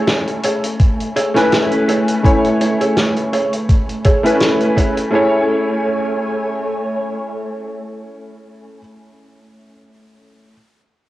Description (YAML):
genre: vaporwave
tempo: 83 BPM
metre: 4/4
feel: swing 55% on 16ths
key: A major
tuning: A4 = 439 Hz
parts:
  - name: warm electric grand piano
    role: accompaniment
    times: 0.0-10.5 s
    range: A3 to G#5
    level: -17 LUFS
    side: equal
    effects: ensemble chorus, cassette tape, tape echo
  - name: soft string machine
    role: sustained chords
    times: 0.0-8.8 s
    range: A3 to C#6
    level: -25 LUFS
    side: equal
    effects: ensemble chorus, cassette tape
  - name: mellow electric guitar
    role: riff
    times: 0.0-9.5 s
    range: G#4 to C#5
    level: -22 LUFS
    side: right 1 dB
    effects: analog chorus, low-pass filter, cassette tape, tape echo
  - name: vintage drum kit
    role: drums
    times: 0.1-5.1 s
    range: hi-hat, snare drum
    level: -21 LUFS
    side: equal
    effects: vintage 12-bit sampler grit, cassette tape
  - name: electronic kick drum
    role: drums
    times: 0.8-4.9 s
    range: none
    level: -13 LUFS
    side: equal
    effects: vintage 12-bit sampler grit, cassette tape
room: moderate studio reverb, RT60 0.5 s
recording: home recording on cassette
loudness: -14 LUFS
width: side -16 dB against mid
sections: 0.0-5.1 A section; 5.1-8.0 B section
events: filter sweep on string machine 0.0-5.1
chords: 0.0 Amaj7